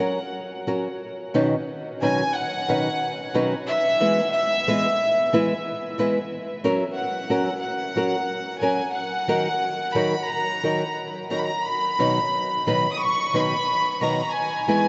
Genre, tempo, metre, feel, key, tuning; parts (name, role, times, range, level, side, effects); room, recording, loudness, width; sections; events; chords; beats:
mexican folk, mariachi; 90 BPM; 4/4; swing 54% on 8ths, rubato; B major; A4 = 441 Hz
clear chamber violin section; melody; 0.0-14.9 s; E5 to D#6; -26 LUFS; equal
nylon-string guitar; accompaniment; 0.0-14.9 s; B2 to B4; -27 LUFS; equal
wet huge ambient reverb, RT60 8.0 s; in a vast, echoing space, nothing above 7.8 kHz; -24 LUFS; mono
1.0-14.9 A section
0.0 F#; 1.0 Badd9; 3.7 E; 6.3 F#; 8.9 D#m; 11.6 B; 14.3 E
0.31 | 0.99 1.67 2.34 3.00 | 3.66 4.32 4.99 5.65 | 6.30 6.95 7.61 8.27 | 8.93 9.59 10.26 10.94 | 11.62 12.30 12.98 13.65 | 14.32